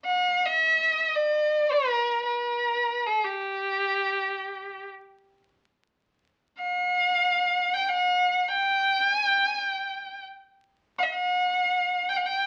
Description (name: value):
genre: Arabic maqam ensemble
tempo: free time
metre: none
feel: none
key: unclear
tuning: A4 = 440 Hz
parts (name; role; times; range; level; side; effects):
- rich violin; solo; 0.1-12.5 s; G4 to G5; -25 LUFS; equal; none
room: moderate studio reverb, RT60 0.7 s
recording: very old 78 rpm record, vinyl crackle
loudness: -25 LUFS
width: mono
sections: 0.0-6.2 A section; 6.2-12.5 A section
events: none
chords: none